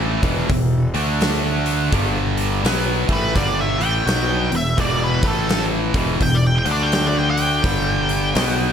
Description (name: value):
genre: blues rock power trio and southern rock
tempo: 84 BPM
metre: 4/4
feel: swing 63% on 8ths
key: E minor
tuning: A4 = 441 Hz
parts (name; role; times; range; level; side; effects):
- tight distorted guitar; riff; 0.0-8.7 s; E2 to D4; -20 LUFS; equal; distortion
- fuzz fingered electric bass; bass; 0.0-8.7 s; E1 to D2; -23 LUFS; equal; overdrive
- huge arena drum kit; drums; 0.2-8.6 s; hi-hat, kick drum, snare drum; -23 LUFS; equal; none
- octave-fuzz lead guitar; melody; 3.1-8.7 s; A4 to G5; -23 LUFS; equal; distortion
room: small room reverb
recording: none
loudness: -16 LUFS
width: side -8 dB against mid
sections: 0.0-8.7 A section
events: lead electric guitar solo 0.0-8.7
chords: 0.1 E5; 0.9 D5; 1.9 G5; 2.6 Em; 5.1 A5; 5.8 E5; 6.6 D5; 7.6 G5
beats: 0.49 1.21 | 1.92 2.63 3.35 4.06 | 4.78 5.49 6.21 6.92 | 7.64 8.35